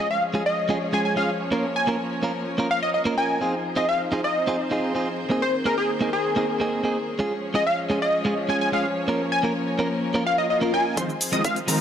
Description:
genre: EDM, festival progressive house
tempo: 127 BPM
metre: 4/4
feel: straight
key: Bb minor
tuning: A4 = 440 Hz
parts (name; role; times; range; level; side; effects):
- plucky unison lead; melody; 0.0-11.6 s; Ab4 to Ab5; -25 LUFS; left 1 dB; analog chorus, tape echo
- direct-recorded clean electric guitar; accompaniment; 0.0-11.8 s; F3 to Bb4; -26 LUFS; right 2 dB; vintage 12-bit sampler grit, sidechain pumping, tape echo
- dark studio string section; sustained chords; 0.0-11.8 s; Eb3 to Db5; -28 LUFS; left 1 dB; sidechain pumping, low-pass filter
- swell and riser; sound effects; 10.2-11.8 s; none; -30 LUFS; left 4 dB; none
- wide unison pluck; arpeggios; 11.0-11.8 s; Bb5 to F6; -30 LUFS; equal; phaser, sidechain pumping, tape echo
- supersaw chords; riff; 11.0-11.8 s; Eb3 to F5; -26 LUFS; equal; sidechain pumping, low-pass filter
- electronic hi-hat and shaker; drums; 11.0-11.8 s; none; -26 LUFS; left 1 dB; none
- electronic kick drum; drums; 11.0-11.5 s; none; -31 LUFS; equal; high-pass filter on kick
room: moderate lush hall reverb, RT60 2.4 s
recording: none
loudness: -21 LUFS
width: side -9 dB against mid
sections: 0.0-11.0 A section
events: swell 10.2-11.0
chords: 0.0 Db; 1.5 Bbm; 3.4 Fm7; 5.3 Abadd9; 7.2 Db; 9.1 Bbm; 11.0 Fm7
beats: 0.11 0.58 1.05 | 1.52 2.00 2.47 2.94 | 3.42 3.89 4.36 4.83 | 5.30 5.78 6.25 6.72 | 7.20 7.67 8.14 8.61 | 9.08 9.56 10.03 10.50 | 10.97 11.45

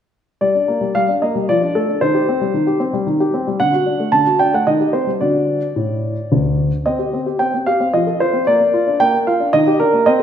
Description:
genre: classical-period piano sonatina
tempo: 112 BPM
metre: 3/4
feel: straight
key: G minor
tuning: A4 = 437 Hz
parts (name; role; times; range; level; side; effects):
- warm concert grand piano; solo; 0.4-10.2 s; D2 to A5; -14 LUFS; equal; none
room: wet recital hall reverb, RT60 1.6 s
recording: recorded in a church or concert hall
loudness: -14 LUFS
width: side -9 dB against mid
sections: 0.4-10.2 A section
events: none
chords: 0.4 Gm; 1.5 Dm/F; 2.0 Cm/Eb; 3.6 D; 4.7 Cm/Eb; 5.2 D; 6.9 Cm; 7.9 F7; 8.5 Bb; 9.5 Ebmaj7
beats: | 0.41 0.95 1.49 | 2.01 2.54 3.06 | 3.60 4.12 4.66 | 5.21 5.76 6.31 | 6.86 7.40 7.94 | 8.47 9.00 9.53 | 10.06

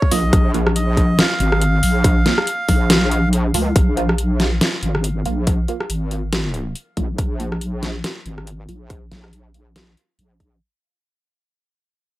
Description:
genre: deep dubstep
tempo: 140 BPM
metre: 4/4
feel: swing 57% on 16ths, half-time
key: Bb minor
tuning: A4 = 443 Hz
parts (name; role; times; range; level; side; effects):
- melodica; melody; 0.0-3.3 s; Db5 to F5; -24 LUFS; right 1 dB; dub echo
- electronic kick drum; drums; 0.0-10.5 s; none; -18 LUFS; equal; overdrive
- filtered dub chord stab; stabs; 0.1-9.2 s; F3 to F4; -27 LUFS; right 4 dB; phaser, wide subtle chorus, dub echo
- wobble bass; bass; 0.1-10.6 s; Ab1 to Db2; -19 LUFS; equal; chorus
- dubstep drum kit; drums; 0.1-10.5 s; hi-hat, rim click, snare drum; -20 LUFS; equal; overdrive
room: digital ambience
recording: dry, gritty hardware recording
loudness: -16 LUFS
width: side -17 dB against mid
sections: 0.0-3.8 A section; 3.8-10.6 B section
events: drop 0.0-3.8; break 3.3-3.8; fade-out 3.8-10.6; filter sweep on synth stab 3.8-10.6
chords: 0.0 Bb5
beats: | 0.33 0.76 1.19 1.61 | 2.04 2.47 2.90 3.33 | 3.76 4.19 4.61 5.04 | 5.47 5.90 6.33 6.76 | 7.19 7.61 8.04 8.47 | 8.90 9.33 9.76 10.19

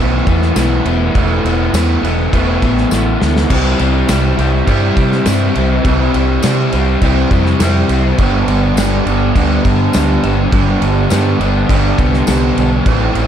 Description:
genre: rock, shoegaze and dream pop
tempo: 103 BPM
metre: 4/4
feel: straight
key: unclear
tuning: A4 = 440 Hz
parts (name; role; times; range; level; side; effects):
- crunchy overdriven guitar; riff; 0.0-13.3 s; G2 to E4; -17 LUFS; left 9 dB; wide subtle chorus
- electric guitar through a small old amp; riff; 0.0-13.3 s; E2 to G4; -17 LUFS; right 11 dB; reverse reverb
- overdriven fingered electric bass; bass; 0.0-13.3 s; E1 to C3; -16 LUFS; equal; none
- loose indie drum kit; drums; 0.3-13.3 s; crash cymbal, kick drum, snare drum; -18 LUFS; equal; none
- tambourine; percussion; 0.6-12.4 s; none; -28 LUFS; left 11 dB; none
room: light reverb, small room reverb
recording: dark, warm production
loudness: -11 LUFS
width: side -9 dB against mid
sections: 0.0-3.5 A section; 3.5-13.3 A section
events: drum fill 2.9-3.5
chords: 0.0 Esus4; 3.5 C; 8.2 G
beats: 0.56 | 1.15 1.74 2.33 2.91 | 3.50 4.09 4.67 5.26 | 5.84 6.43 7.01 7.60 | 8.18 8.77 9.35 9.93 | 10.52 11.10 11.68 12.27 | 12.85

